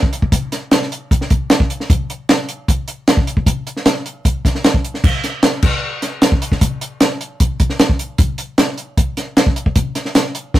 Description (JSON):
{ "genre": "rock", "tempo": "153 BPM", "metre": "4/4", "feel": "straight", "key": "none", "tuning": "none", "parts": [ { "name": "compact cocktail drum kit", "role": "drums", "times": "0.0-10.6 s", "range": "crash cymbal, hi-hat, kick drum, snare drum", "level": "-13 LUFS", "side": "equal", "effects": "none" } ], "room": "light reverb", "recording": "rough rehearsal-room recording, tube saturation", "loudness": "-14 LUFS", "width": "side -14 dB against mid", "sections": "0.0-10.6 A section", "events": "none", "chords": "none", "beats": "| 0.33 0.72 1.11 1.50 | 1.90 2.29 2.68 3.08 | 3.47 3.86 4.26 4.65 | 5.04 5.43 5.83 6.22 | 6.61 7.01 7.40 7.79 | 8.19 8.58 8.97 9.37 | 9.76 10.15 10.54" }